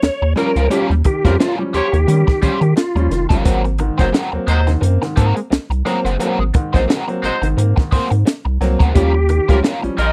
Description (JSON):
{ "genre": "funk", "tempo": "87 BPM", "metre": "4/4", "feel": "swing 56% on 16ths", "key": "unclear", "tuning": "A4 = 440 Hz", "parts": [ { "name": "bright tonewheel organ", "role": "melody", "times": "0.0-3.3, 8.9-10.1 s", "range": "F4 to Eb5", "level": "-21 LUFS", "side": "equal", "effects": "chorus vibrato, stopped rotary speaker" }, { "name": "overdriven semi-hollow guitar", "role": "accompaniment", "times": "0.0-10.1 s", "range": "G3 to C5", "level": "-25 LUFS", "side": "equal", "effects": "wah" }, { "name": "round analog bass", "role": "bass", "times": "0.0-10.1 s", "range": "F1 to Eb3", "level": "-18 LUFS", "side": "equal", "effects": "none" }, { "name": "compact cocktail drum kit", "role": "drums", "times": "0.0-10.1 s", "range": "hi-hat, kick drum, snare drum", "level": "-18 LUFS", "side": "equal", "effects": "none" }, { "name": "clear upright piano", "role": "stabs", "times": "0.4-10.0 s", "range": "Ab2 to Db4", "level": "-24 LUFS", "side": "equal", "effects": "none" }, { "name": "warm horn section", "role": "second line", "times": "1.2-10.1 s", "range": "Gb3 to Db5", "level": "-24 LUFS", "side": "equal", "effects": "none" } ], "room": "little or no reverb", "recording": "dry, close 1970s-style studio recording", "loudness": "-16 LUFS", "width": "mono", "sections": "0.0-10.1 A section", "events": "none", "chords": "0.0 Eb9; 3.5 Ab9; 9.0 Eb9" }